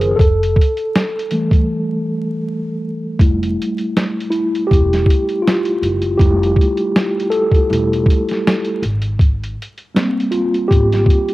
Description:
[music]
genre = lo-fi hip hop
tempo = 80 BPM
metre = 4/4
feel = swing 55% on 16ths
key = F major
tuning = A4 = 440 Hz
[part]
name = mellow tine electric piano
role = accompaniment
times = 0.0-11.3 s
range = Eb3 to C5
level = -17 LUFS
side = equal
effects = medium stereo tremolo, cassette tape
[part]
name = upright bass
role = bass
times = 0.0-11.0 s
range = E1 to Ab1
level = -19 LUFS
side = equal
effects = none
[part]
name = lo-fi sampler-style drum kit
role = drums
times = 0.0-11.3 s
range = hi-hat, kick drum, snare drum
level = -15 LUFS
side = equal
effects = cassette tape
[sound]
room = little or no reverb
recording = home recording on cassette, vinyl crackle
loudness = -14 LUFS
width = side -18 dB against mid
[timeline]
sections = 0.0-3.2 A section; 3.2-11.3 B section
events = tine electric piano solo 0.0-3.2, 3.2-11.3; break 1.7-3.2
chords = 0.2 Fmaj9 (rootless); 3.2 Fmaj9; 8.8 Abmaj9

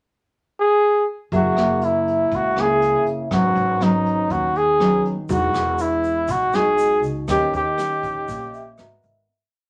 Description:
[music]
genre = bossa nova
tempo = 121 BPM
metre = 4/4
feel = straight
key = G# minor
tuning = A4 = 440 Hz
[part]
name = warm flugelhorn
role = melody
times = 0.6-8.8 s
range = D#4 to G#4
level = -21 LUFS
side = equal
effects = none
[part]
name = nylon-string guitar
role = accompaniment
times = 1.3-9.3 s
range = G#2 to A#4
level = -26 LUFS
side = equal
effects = none
[part]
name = vibraphone with soft mallets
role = accompaniment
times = 1.3-3.3, 7.3-9.3 s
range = D#5 to E5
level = -28 LUFS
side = equal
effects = none
[part]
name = upright bass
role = bass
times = 1.3-9.3 s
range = E1 to D#2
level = -33 LUFS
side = equal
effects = none
[part]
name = vintage brush drum kit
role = drums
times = 1.3-9.2 s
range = hi-hat, kick drum, rim click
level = -37 LUFS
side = equal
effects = none
[part]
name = egg shaker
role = percussion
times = 5.3-9.3 s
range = none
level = -48 LUFS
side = equal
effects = none
[sound]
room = moderate studio reverb, RT60 0.5 s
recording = none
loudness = -20 LUFS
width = mono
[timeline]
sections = 0.0-1.3 pickup bar; 1.3-9.3 A section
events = fade-out 7.3-9.3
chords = 0.0 N.C.; 1.3 F#9; 3.3 G#m7; 5.3 Emaj9; 7.3 D#7b9b13; 8.8 G#m9

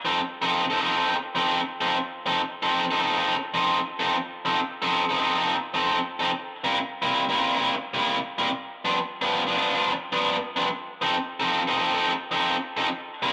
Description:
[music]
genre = blues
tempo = 110 BPM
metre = 4/4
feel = swing 65% on 8ths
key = unclear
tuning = A4 = 440 Hz
[part]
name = overdriven electric guitar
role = solo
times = 0.0-13.3 s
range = G2 to A4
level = -25 LUFS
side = equal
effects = spring reverb
[sound]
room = moderate studio reverb, RT60 0.5 s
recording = none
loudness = -25 LUFS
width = mono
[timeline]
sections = 0.0-13.3 A section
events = none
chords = 0.0 F7; 6.3 C7; 8.5 G7; 10.7 F7

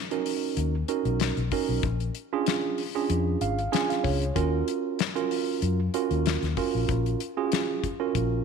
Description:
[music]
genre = straight-eighth soul blues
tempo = 95 BPM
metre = 4/4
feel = swing 54% on 16ths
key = Eb minor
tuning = A4 = 437 Hz
[part]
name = tine electric piano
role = accompaniment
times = 0.1-8.4 s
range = Db4 to Ab5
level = -27 LUFS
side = right 7 dB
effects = none
[part]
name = damped 70s drum kit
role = drums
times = 0.1-8.3 s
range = hi-hat, kick drum, snare drum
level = -30 LUFS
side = left 8 dB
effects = none
[part]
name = vintage muted fingered electric bass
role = bass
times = 0.6-8.4 s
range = Ab1 to Gb2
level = -27 LUFS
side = left 3 dB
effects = none
[sound]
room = moderate echo chamber reverb, RT60 1.6 s, small room ambience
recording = 1960s-style stereo with parts hard left and right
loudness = -24 LUFS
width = side -6 dB against mid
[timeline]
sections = 0.0-8.4 A section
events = tine electric piano fill 3.1-4.4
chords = 0.0 Bmaj7; 1.8 Bb7#9 (rootless); 4.4 Ebm9

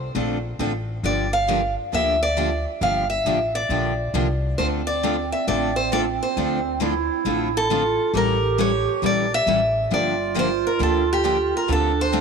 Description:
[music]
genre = acoustic string swing (jazz manouche)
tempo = 135 BPM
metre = 4/4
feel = swing 64% on 8ths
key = D minor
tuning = A4 = 440 Hz
[part]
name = picked steel-string acoustic guitar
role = melody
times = 0.0-12.2 s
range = G4 to F5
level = -23 LUFS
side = equal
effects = none
[part]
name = upright bass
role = bass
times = 0.0-12.2 s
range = G1 to D2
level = -27 LUFS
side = left 1 dB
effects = none
[part]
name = picked steel-string acoustic guitar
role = accompaniment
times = 0.1-12.2 s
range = D3 to A4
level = -27 LUFS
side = left 14 dB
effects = none
[part]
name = picked steel-string acoustic guitar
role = accompaniment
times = 0.1-12.2 s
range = D3 to A4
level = -29 LUFS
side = right 12 dB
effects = none
[part]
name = breathy clarinet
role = second line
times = 4.6-12.2 s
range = C4 to G4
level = -25 LUFS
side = right 11 dB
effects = none
[sound]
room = moderate plate reverb, RT60 3.6 s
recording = 1960s-style stereo with parts hard left and right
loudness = -19 LUFS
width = side -6 dB against mid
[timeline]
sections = 0.0-12.2 A section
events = none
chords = 0.0 Dm7; 1.0 Gm7; 4.6 Dm7; 8.1 A7b9; 9.9 Gm7; 11.7 Dm7

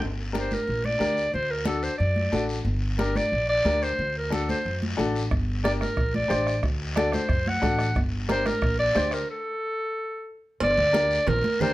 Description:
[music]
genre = latin, cumbia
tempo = 181 BPM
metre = 4/4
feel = straight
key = G harmonic minor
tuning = A4 = 442 Hz
[part]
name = upright bass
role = bass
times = 0.0-11.7 s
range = G1 to F#2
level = -29 LUFS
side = equal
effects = none
[part]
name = congas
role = percussion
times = 0.0-11.7 s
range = none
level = -31 LUFS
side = right 1 dB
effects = none
[part]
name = guiro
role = percussion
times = 0.0-11.7 s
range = none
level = -38 LUFS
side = left 3 dB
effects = none
[part]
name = clear upright piano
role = accompaniment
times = 0.3-11.7 s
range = D4 to C5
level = -30 LUFS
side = left 3 dB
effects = none
[part]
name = clear clarinet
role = melody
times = 0.4-11.7 s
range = A4 to F#5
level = -25 LUFS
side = equal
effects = none
[part]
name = bombo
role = percussion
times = 5.3-9.3 s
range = none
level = -29 LUFS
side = right 1 dB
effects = none
[part]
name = cowbell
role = percussion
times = 10.6-11.4 s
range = none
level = -36 LUFS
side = right 3 dB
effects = none
[sound]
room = moderate studio reverb, RT60 0.6 s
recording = dark, warm production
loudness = -23 LUFS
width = side -16 dB against mid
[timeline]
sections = 0.0-10.6 A section; 10.6-11.7 B section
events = stop 9.3-10.6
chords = 0.0 Gm; 1.3 D; 2.7 Gm; 4.0 D7; 5.3 Gm; 6.6 D7; 8.0 Gm; 9.3 N.C.; 10.6 Gm

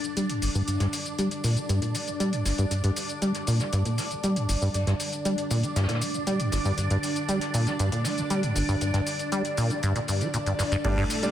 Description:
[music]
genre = acid house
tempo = 118 BPM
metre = 4/4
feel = straight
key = G minor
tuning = A4 = 440 Hz
[part]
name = string machine, full ensemble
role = sustained chords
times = 0.0-11.3 s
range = A3 to D5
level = -31 LUFS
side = equal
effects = phaser, ensemble chorus, sidechain pumping
[part]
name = deep acid bass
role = riff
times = 0.0-11.0 s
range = G1 to Bb3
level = -26 LUFS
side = equal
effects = tube saturation, lush chorus, tape echo
[part]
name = electro analog drum machine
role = drums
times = 0.0-11.3 s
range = crash cymbal, hi-hat, shaker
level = -33 LUFS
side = left 2 dB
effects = none
[part]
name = jazz brush drum kit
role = drums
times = 0.0-11.3 s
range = hi-hat, snare drum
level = -41 LUFS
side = left 1 dB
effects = high-pass filter on hats, low-pass filter on hats, high-pass filter on snare, low-pass filter on snare, high-pass filter on room, low-pass filter on room
[part]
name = warm grand piano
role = stabs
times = 10.8-11.3 s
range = G3 to D5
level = -28 LUFS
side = right 2 dB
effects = tape echo
[part]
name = electronic kick drum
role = drums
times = 10.8-10.9 s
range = none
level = -30 LUFS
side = equal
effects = none
[sound]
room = moderate lush hall reverb, RT60 1.9 s, studio ambience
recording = none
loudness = -24 LUFS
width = side -11 dB against mid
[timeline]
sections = 0.0-10.8 A section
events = filter sweep on acid bass 0.0-10.8; filter sweep on string machine 0.0-10.8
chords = 0.0 G5

